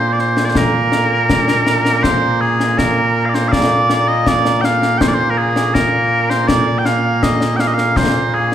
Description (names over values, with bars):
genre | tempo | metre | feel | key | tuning
scottish traditional, Scottish pipe music | 81 BPM | 2/4 | straight | Bb mixolydian | A4 = 440 Hz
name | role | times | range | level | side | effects
mellow small bagpipes | melody | 0.0-8.5 s | Bb2 to G5 | -14 LUFS | right 1 dB | none
concert snare drum and concert bass drum | drums | 0.2-8.5 s | none | -19 LUFS | left 2 dB | none
room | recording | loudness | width
wet recital hall reverb, RT60 1.7 s | recorded in a church or concert hall | -12 LUFS | side -10 dB against mid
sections
0.0-2.0 A section; 2.0-8.5 B section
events
none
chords
none